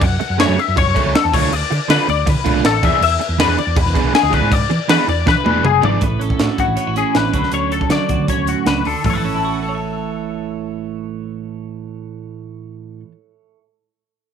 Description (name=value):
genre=math rock and midwest emo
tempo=159 BPM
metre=4/4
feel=straight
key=A major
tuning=A4 = 441 Hz
part: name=twelve-string electric guitar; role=arpeggios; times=0.0-13.1 s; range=F#4 to A5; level=-18 LUFS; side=left 12 dB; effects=ensemble chorus
part: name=overdriven electric guitar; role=riff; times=0.0-6.0 s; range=C#3 to G#4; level=-21 LUFS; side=right 13 dB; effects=none
part: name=hollow-body short-scale picked electric bass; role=bass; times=0.0-13.0 s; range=E1 to E3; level=-21 LUFS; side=equal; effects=transformer saturation
part: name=crisp fusion drum kit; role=drums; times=0.0-9.1 s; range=crash cymbal, hi-hat, kick drum, snare drum, toms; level=-18 LUFS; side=right 1 dB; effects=none
part: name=twelve-string electric guitar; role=accompaniment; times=6.0-13.6 s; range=E2 to E5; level=-23 LUFS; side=right 12 dB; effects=spring reverb
room=small room ambience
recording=1960s-style stereo with parts hard left and right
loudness=-14 LUFS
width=side -7 dB against mid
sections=0.0-6.0 A section; 6.0-9.0 B section; 9.0-12.1 C section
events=drum fill 5.3-6.0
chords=0.0 F#m7; 1.3 Dm6; 2.8 E7; 6.0 A69; 7.3 Dmaj7; 9.0 A